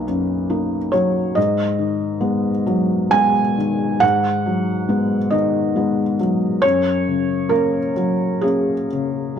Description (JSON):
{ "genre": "neoclassical minimalist piano", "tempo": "62-71 BPM", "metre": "3/4", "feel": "rubato", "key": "unclear", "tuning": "A4 = 435 Hz", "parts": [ { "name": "felt-muted upright piano", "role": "solo", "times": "0.0-9.4 s", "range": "B1 to G#5", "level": "-17 LUFS", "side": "equal", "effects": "none" } ], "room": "light reverb", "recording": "none", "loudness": "-16 LUFS", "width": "side -8 dB against mid", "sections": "0.0-9.4 A section", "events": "none", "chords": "0.0 Bmaj7; 1.4 G#m7; 6.6 F#", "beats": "0.51 | 1.37 2.22 3.15 | 4.02 4.90 5.76 | 6.63 7.51 8.43" }